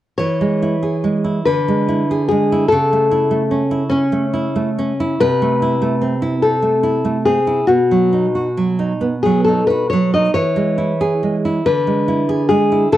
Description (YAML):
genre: romantic duo for nylon-string guitar and classical guitar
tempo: 44-51 BPM (dotted quarters)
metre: 6/8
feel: rubato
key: E major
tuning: A4 = 436 Hz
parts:
  - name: nylon-string guitar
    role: melody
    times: 0.2-13.0 s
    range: C#4 to D#5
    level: -17 LUFS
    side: left 3 dB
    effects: slapback echo
  - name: nylon-string guitar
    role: accompaniment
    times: 0.2-13.0 s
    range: B2 to G#4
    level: -17 LUFS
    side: right 3 dB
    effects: none
room: studio reverb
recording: dry, close 1970s-style studio recording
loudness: -14 LUFS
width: side -13 dB against mid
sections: 0.2-13.0 A section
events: none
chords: 0.2 E; 1.5 E7/D; 2.7 A/C#; 5.2 Am/C; 7.7 B; 10.3 E; 11.6 E7/D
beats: | 0.19 1.46 | 2.70 3.89 | 5.22 6.43 | 7.68 8.99 | 10.33 11.65 | 12.90